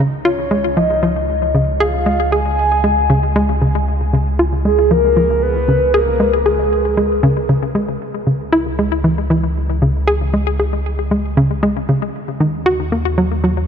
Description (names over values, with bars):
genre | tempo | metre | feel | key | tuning
ambient, sequencer-driven space music | 116 BPM | 4/4 | straight | C# dorian from 8.0 s | A4 = 443 Hz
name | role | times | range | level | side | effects
hollow square pluck | riff | 0.0-13.7 s | C#3 to G#4 | -16 LUFS | equal | chorus, ping-pong delay
warm sub bass | bass | 0.0-13.7 s | C#2 to D#2 | -20 LUFS | equal | none
soft octave-layered synth lead | melody | 0.2-7.2 s | G#4 to G#5 | -18 LUFS | equal | chorus, phaser, ping-pong delay
room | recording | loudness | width
moderate huge ambient reverb, RT60 7.6 s | none | -14 LUFS | side -7 dB against mid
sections
0.0-8.0 A section; 8.0-13.7 B section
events
none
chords
0.0 C#; 8.0 C#m; 12.1 D#m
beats
0.25 0.77 1.28 | 1.80 2.32 2.84 3.35 | 3.87 4.39 4.91 5.42 | 5.94 6.46 6.97 7.49 | 8.01 8.53 9.04 9.56 | 10.08 10.60 11.11 11.63 | 12.15 12.66 13.18